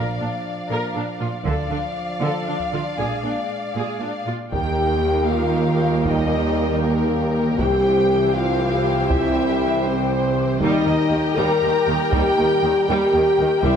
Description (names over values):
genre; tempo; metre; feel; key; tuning
cinematic, epic orchestral film score; 79 BPM (dotted quarters); 6/8; straight; Bb major, Eb major from 4.5 s; A4 = 442 Hz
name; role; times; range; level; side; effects
warm symphonic violin section; melody; 0.0-13.8 s; Bb4 to Bb5; -28 LUFS; left 3 dB; none
clear symphonic violin section; second line; 0.0-13.8 s; Bb4 to G5; -28 LUFS; left 2 dB; none
rich symphonic viola section; accompaniment; 0.0-13.8 s; Eb3 to Bb4; -28 LUFS; right 2 dB; none
mellow French horn section; sustained chords; 0.0-13.8 s; F3 to Bb4; -22 LUFS; left 3 dB; none
clear symphonic double bass section; bass; 0.0-13.7 s; Bb1 to Eb2; -28 LUFS; right 4 dB; none
rich symphonic cello section; bass; 0.0-13.7 s; C2 to D3; -28 LUFS; right 3 dB; none
taiko ensemble; drums; 1.5-13.8 s; none; -27 LUFS; right 1 dB; none
bright trombone section; sustained chords; 4.5-13.8 s; C3 to Bb3; -29 LUFS; right 5 dB; none
clear tuba; bass; 4.5-13.8 s; C2 to Eb2; -27 LUFS; right 4 dB; none
timpani; percussion; 10.6-11.3 s; Eb3; -29 LUFS; equal; none
room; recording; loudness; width
moderate scoring stage reverb, RT60 1.9 s; none; -18 LUFS; side -7 dB against mid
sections
0.0-4.5 A section; 4.5-13.8 B section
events
none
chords
0.0 Bb; 1.5 Dm; 3.0 Bb7; 4.5 Eb; 7.6 C; 10.6 Eb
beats
0.70 | 1.46 2.21 | 2.98 3.76 | 4.53 5.30 | 6.06 6.82 | 7.60 8.35 | 9.11 9.86 | 10.61 11.38 | 12.13 12.89 | 13.64